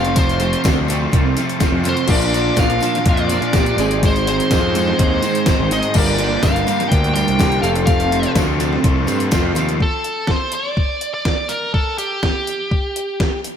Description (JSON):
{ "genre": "indie rock", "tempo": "124 BPM", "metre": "4/4", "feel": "straight", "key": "unclear", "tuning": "A4 = 442 Hz", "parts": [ { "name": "nasal lead guitar with a parked wah", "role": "melody", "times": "0.0-13.4 s", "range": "G4 to G5", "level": "-21 LUFS", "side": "equal", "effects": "overdrive, slapback echo" }, { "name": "combo organ", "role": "sustained chords", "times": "0.0-9.8 s", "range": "C4 to Ab5", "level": "-33 LUFS", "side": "right 1 dB", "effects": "wide subtle chorus" }, { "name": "overdriven electric guitar", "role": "riff", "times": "0.0-9.8 s", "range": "F2 to Eb4", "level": "-24 LUFS", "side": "left 7 dB", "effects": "slapback echo" }, { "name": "twelve-string electric guitar", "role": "riff", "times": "0.0-9.8 s", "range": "F2 to Eb4", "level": "-22 LUFS", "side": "right 7 dB", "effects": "ensemble chorus, slapback echo" }, { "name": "fuzz picked electric bass", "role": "bass", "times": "0.0-9.8 s", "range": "F1 to Bb2", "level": "-21 LUFS", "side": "equal", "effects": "overdrive" }, { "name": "detuned 8-bit digital drum machine", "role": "drums", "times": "0.0-13.6 s", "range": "crash cymbal, hi-hat, kick drum, snare drum", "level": "-19 LUFS", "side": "equal", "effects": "overdrive" }, { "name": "tambourine", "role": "percussion", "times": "0.2-9.7 s", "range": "none", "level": "-36 LUFS", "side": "left 5 dB", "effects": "none" }, { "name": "tine electric piano", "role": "second line", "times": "2.1-9.8 s", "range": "F4 to Bb4", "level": "-26 LUFS", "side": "left 5 dB", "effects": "medium stereo tremolo, slapback echo" } ], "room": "moderate lush hall reverb, RT60 1.9 s", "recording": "big arena sound", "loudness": "-15 LUFS", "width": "side -8 dB against mid", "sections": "0.0-9.8 A section; 9.8-13.6 B section", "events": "none", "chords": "0.0 F; 2.1 Bb; 3.8 Ab; 6.0 Gm; 7.6 F; 9.8 N.C." }